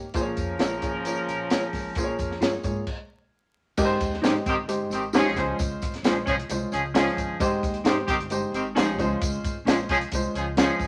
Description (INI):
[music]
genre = uptempo 1960s-style soul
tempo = 132 BPM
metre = 4/4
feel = straight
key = Ab major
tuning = A4 = 438 Hz
[part]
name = dark upright piano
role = accompaniment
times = 0.0-10.9 s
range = Ab3 to Db5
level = -31 LUFS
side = equal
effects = none
[part]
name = upright bass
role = bass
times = 0.0-10.9 s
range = G1 to Ab2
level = -39 LUFS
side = equal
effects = none
[part]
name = warm horn section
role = second line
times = 0.1-10.9 s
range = Eb3 to Bb4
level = -30 LUFS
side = equal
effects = none
[part]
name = compact cocktail drum kit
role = drums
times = 0.1-10.9 s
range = crash cymbal, hi-hat, kick drum, snare drum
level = -30 LUFS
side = equal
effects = none
[part]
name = tambourine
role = percussion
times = 0.2-10.9 s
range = none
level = -44 LUFS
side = equal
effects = none
[part]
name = mellow electric guitar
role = stabs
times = 0.6-10.7 s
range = Db4 to Db5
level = -30 LUFS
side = equal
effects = none
[sound]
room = moderate studio reverb, RT60 0.7 s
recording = vinyl crackle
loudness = -25 LUFS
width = mono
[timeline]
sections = 0.0-3.8 A section; 3.8-10.9 B section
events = stop 2.9-3.8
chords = 0.2 Bbm7; 3.8 Abmaj7; 5.4 Dbmaj7; 7.4 Abmaj7; 9.0 Dbmaj7